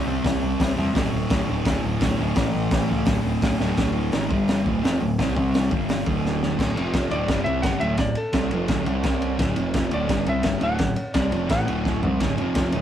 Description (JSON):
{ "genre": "garage rock duo or trio", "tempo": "171 BPM", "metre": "4/4", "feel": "straight", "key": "unclear", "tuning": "A4 = 444 Hz", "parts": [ { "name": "fuzz guitar", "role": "riff", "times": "0.0-12.8 s", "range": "D2 to C4", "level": "-24 LUFS", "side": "equal", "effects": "distortion" }, { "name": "growling picked electric bass", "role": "bass", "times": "0.1-12.8 s", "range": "D1 to E2", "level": "-28 LUFS", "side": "equal", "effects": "overdrive" }, { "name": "crunchy breakbeat drum kit", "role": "drums", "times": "0.2-12.8 s", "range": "crash cymbal, hi-hat, kick drum, ride cymbal, snare drum, toms", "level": "-25 LUFS", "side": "equal", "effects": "none" }, { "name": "clean lap steel guitar", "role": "melody", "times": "7.1-12.0 s", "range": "A4 to F#5", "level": "-28 LUFS", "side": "left 1 dB", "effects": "none" } ], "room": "moderate small room reverb, RT60 0.5 s", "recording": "rough rehearsal-room recording", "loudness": "-20 LUFS", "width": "side -10 dB against mid", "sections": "0.0-3.8 A section; 3.8-6.6 B section; 6.6-12.8 C section", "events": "drum fill 3.6, 6.2-6.6, 11.9-12.2", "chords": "0.0 C5; 0.9 D5; 2.4 A; 3.1 D5; 4.3 G5; 4.7 D5; 5.4 C5; 5.7 G5; 6.1 D5; 6.8 F5; 7.1 D5; 8.9 C5; 9.4 D5; 9.6 F5; 9.9 D; 12.4 F5" }